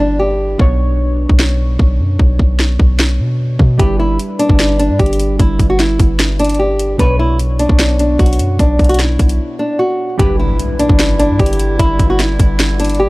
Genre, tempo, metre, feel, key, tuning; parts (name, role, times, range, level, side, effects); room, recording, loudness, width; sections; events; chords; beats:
hip hop, trap; 150 BPM; 4/4; half-time; A4 = 440 Hz
nylon-string guitar; melody; 0.0-0.6, 3.8-13.1 s; D4 to B4; -16 LUFS; equal
glassy digital keys; accompaniment; 0.0-13.1 s; B2 to C#5; -23 LUFS; equal; chorus
hard-hitting 808-style bass; bass; 0.0-13.1 s; G1 to B2; -15 LUFS; equal
trap drum kit; drums; 0.6-13.0 s; hi-hat, kick drum, snare drum; -13 LUFS; equal
clear woodwind section; sustained chords; 10.2-13.1 s; D3 to E4; -25 LUFS; equal
impact; sound effects; 10.3-11.8 s; -24 LUFS; equal
digital ambience; -11 LUFS; side -21 dB against mid
0.0-10.2 A section; 10.2-13.1 B section
break 0.0-3.8, 9.4-10.2; impact 10.2-11.8
0.0 G6; 0.6 Bmadd9; 3.8 G6; 7.0 Bmadd9; 10.2 G6
0.20 | 0.59 0.99 1.40 1.79 | 2.19 2.60 3.00 3.40 | 3.79 4.20 4.59 5.00 | 5.39 5.79 6.20 6.59 | 7.00 7.39 7.79 8.20 | 8.60 8.99 9.39 9.79 | 10.20 10.60 10.99 11.39 | 11.79 12.20 12.60 12.99